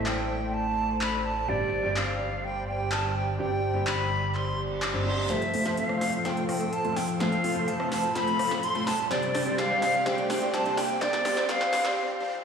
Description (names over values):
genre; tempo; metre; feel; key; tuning
EDM, festival progressive house; 126 BPM; 4/4; straight; unclear; A4 = 439 Hz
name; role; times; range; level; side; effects
bright silver concert flute; melody; 0.0-11.9 s; D5 to D6; -29 LUFS; equal; dub echo
clear grand piano; accompaniment; 0.0-12.4 s; G2 to C5; -33 LUFS; right 2 dB; dub echo
lush unison pad; sustained chords; 0.0-11.9 s; C3 to B5; -34 LUFS; left 2 dB; chorus, phaser
fat analog bass; bass; 0.0-5.3 s; G1 to A1; -33 LUFS; equal; none
big-room dance drum kit; drums; 0.1-11.9 s; handclaps, hi-hat, rim click, snare drum; -33 LUFS; left 1 dB; high-pass filter on snare, high-pass filter on hats, high-pass filter on room
reverse cymbal, riser and swell; sound effects; 4.5-12.4 s; none; -38 LUFS; equal; none
dense compressed supersaw; riff; 5.3-12.4 s; G3 to C5; -31 LUFS; right 1 dB; low-pass filter, dub echo
room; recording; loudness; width
moderate lush hall reverb, RT60 1.9 s; played on a big sound system in a bare room, stone room reverb, high-pass filter, studio ambience; -25 LUFS; side -6 dB against mid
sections
0.0-5.3 A section; 5.3-12.4 B section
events
reverse cymbal 4.5-5.3; build-up 5.3-12.4; drum fill 5.3-12.0; riser 5.3-12.0; filter sweep on supersaw synth 5.3-12.4; break 12.0-12.4; swell 12.0-12.4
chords
0.0 Am; 1.5 Gsus4; 5.3 F; 9.1 Csus2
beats
0.06 0.54 1.01 | 1.49 1.97 2.44 2.92 | 3.39 3.87 4.35 4.82 | 5.30 5.77 6.25 6.73 | 7.20 7.68 8.15 8.63 | 9.11 9.58 10.06 10.54 | 11.01 11.49 11.96 12.44